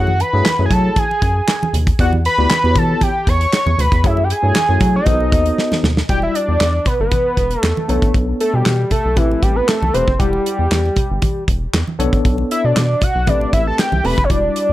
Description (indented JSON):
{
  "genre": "early-eighties boogie funk",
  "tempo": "117 BPM",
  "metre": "4/4",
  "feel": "straight",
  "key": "E minor from 6.1 s",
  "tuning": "A4 = 440 Hz",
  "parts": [
    { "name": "fat analog lead", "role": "melody", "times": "0.0-14.7 s", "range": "E4 to C#6", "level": "-18 LUFS", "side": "equal", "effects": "none" },
    { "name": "tine electric piano", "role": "accompaniment", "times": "0.0-14.7 s", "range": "G3 to F#5", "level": "-22 LUFS", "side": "left 3 dB", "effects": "overdrive, fast stereo tremolo" },
    { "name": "rubbery square bass", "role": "bass", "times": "0.0-14.7 s", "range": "E1 to F#3", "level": "-18 LUFS", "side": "equal", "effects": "none" },
    { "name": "congas", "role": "percussion", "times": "0.1-14.4 s", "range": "none", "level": "-26 LUFS", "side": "right 3 dB", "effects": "none" },
    { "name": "damped 70s drum kit", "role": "drums", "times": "0.2-14.7 s", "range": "handclaps, hi-hat, kick drum, snare drum", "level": "-18 LUFS", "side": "equal", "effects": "none" }
  ],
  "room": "light reverb, studio reverb",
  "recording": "none",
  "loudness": "-13 LUFS",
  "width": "side -15 dB against mid",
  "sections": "0.0-6.1 A section; 6.1-14.7 B section",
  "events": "drum fill 5.6-6.1; analog synth lead solo 6.1-14.7",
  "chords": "0.0 F#m9; 2.0 Em9; 4.0 F#m9; 5.1 B7b9; 6.1 Em9; 7.9 Bm9; 9.2 Am9; 10.2 Em9; 12.0 Bm9; 13.3 Am9",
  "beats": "0.45 0.97 1.48 | 1.99 2.50 3.02 3.53 | 4.04 4.56 5.07 5.58 | 6.09 6.61 7.12 7.63 | 8.15 8.66 9.17 9.68 | 10.20 10.71 11.22 11.74 | 12.25 12.76 13.27 13.79 | 14.30"
}